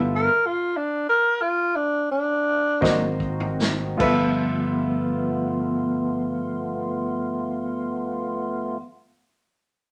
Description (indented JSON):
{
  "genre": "slow blues",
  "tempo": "48-65 BPM (dotted quarters)",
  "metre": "12/8",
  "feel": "straight",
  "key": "G mixolydian",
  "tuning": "A4 = 439 Hz",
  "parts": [
    { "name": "clear baby grand piano", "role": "accompaniment", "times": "0.0-8.8 s", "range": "F4 to E5", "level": "-29 LUFS", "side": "equal", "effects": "none" },
    { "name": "tonewheel organ", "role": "sustained chords", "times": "0.0-8.8 s", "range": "A3 to Gb4", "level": "-31 LUFS", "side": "equal", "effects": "overdrive, chorus vibrato, slow rotary speaker" },
    { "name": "sustaining fretless electric bass", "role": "bass", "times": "0.0-8.8 s", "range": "G1 to Ab1", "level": "-32 LUFS", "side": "equal", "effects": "none" },
    { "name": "growling tenor saxophone", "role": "melody", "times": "0.2-3.2 s", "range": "D4 to Bb4", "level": "-23 LUFS", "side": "equal", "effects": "none" },
    { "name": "mellow electric guitar", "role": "accompaniment", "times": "2.8-8.8 s", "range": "G2 to C4", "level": "-29 LUFS", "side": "equal", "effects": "tremolo" },
    { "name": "vintage drum kit", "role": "drums", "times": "2.8-4.2 s", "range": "crash cymbal, kick drum, snare drum, toms", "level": "-30 LUFS", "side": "equal", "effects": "none" }
  ],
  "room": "moderate studio reverb, RT60 0.8 s",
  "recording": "none",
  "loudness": "-24 LUFS",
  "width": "mono",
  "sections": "0.0-4.0 A section; 4.0-9.0 B section",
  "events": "slowing down 0.0-4.0; tenor saxophone solo 0.0-4.0; stop 0.0-2.8; drum fill 2.8-4.0",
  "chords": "0.0 G13; 2.8 Ab9; 4.0 G13",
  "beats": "0.76 1.75 2.82 | 4.00 5.25 6.49 7.74"
}